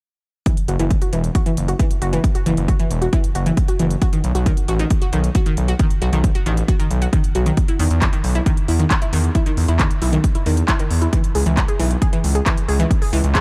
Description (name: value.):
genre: uplifting trance.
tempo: 135 BPM.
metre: 4/4.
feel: straight.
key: unclear.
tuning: A4 = 440 Hz.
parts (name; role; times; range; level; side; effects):
analog pluck; arpeggios; 0.5-13.4 s; D#3 to G#4; -25 LUFS; equal; chorus, sidechain pumping, digital delay.
electronic kick drum; drums; 0.5-13.4 s; none; -20 LUFS; equal; overdrive, small room ambience.
techno drum kit; drums; 0.5-13.4 s; handclaps, hi-hat; -29 LUFS; equal; overdrive, small room ambience.
gritty driven synth bass; bass; 0.7-13.4 s; E1 to E2; -21 LUFS; equal; sidechain pumping.
room: little or no reverb.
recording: dark, warm production.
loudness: -18 LUFS.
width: mono.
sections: 0.5-13.4 A section.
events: none.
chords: 0.5 Esus2; 4.0 B7; 7.6 E5; 11.1 C#7(no3).